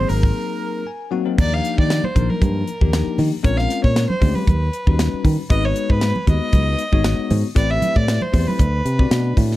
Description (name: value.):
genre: electric jazz fusion.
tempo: 116 BPM.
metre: 4/4.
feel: swing 54% on 16ths.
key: unclear.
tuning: A4 = 440 Hz.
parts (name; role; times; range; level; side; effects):
warm violin; melody; 0.0-9.4 s; Bb4 to F5; -25 LUFS; right 1 dB; tape echo.
breathy silver concert flute; second line; 0.0-0.9 s; Bb4 to C5; -29 LUFS; right 8 dB; none.
bell-like tine electric piano; accompaniment; 0.0-9.5 s; F3 to Ab5; -24 LUFS; left 7 dB; fast stereo tremolo, wide subtle chorus.
fingered electric bass; bass; 0.0-9.6 s; Ab1 to Eb3; -19 LUFS; equal; none.
tight funk drum kit; drums; 0.1-9.6 s; crash cymbal, hi-hat, kick drum, snare drum; -19 LUFS; equal; none.
congas; percussion; 2.0-9.5 s; none; -26 LUFS; right 4 dB; none.
room: small room ambience.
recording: dark, warm production.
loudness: -16 LUFS.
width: side -16 dB against mid.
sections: 0.0-1.4 A section; 1.4-9.6 B section.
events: break 0.4-1.4; tine electric piano fill 0.6-1.4.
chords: 0.0 Ab9; 1.4 Ebmaj9; 3.4 Bbm9; 4.5 Eb7alt; 5.5 Abm7; 7.6 Am9; 8.6 D7.